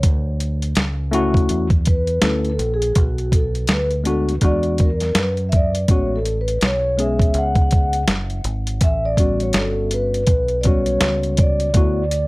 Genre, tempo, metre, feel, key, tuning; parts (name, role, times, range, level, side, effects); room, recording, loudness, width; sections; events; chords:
hip hop, jazz-hop; 82 BPM; 4/4; swing 60% on 16ths; A4 = 440 Hz
deep dub fingered electric bass; bass; 0.0-12.3 s; F#1 to F#2; -22 LUFS; equal
boom bap sampler-style drum kit; drums; 0.0-12.3 s; hi-hat, kick drum, snare drum; -18 LUFS; equal
tine electric piano; accompaniment; 1.1-12.0 s; G3 to A4; -22 LUFS; left 2 dB
vibraphone with soft mallets; melody; 1.9-12.3 s; F#4 to F#5; -23 LUFS; equal; tape echo
light reverb; -16 LUFS; side -23 dB against mid
0.0-12.3 A section
vibraphone solo 0.0-12.3
0.0 Dmaj9; 3.0 Bm; 4.4 E9; 5.9 Amaj13; 8.8 A13; 11.7 D6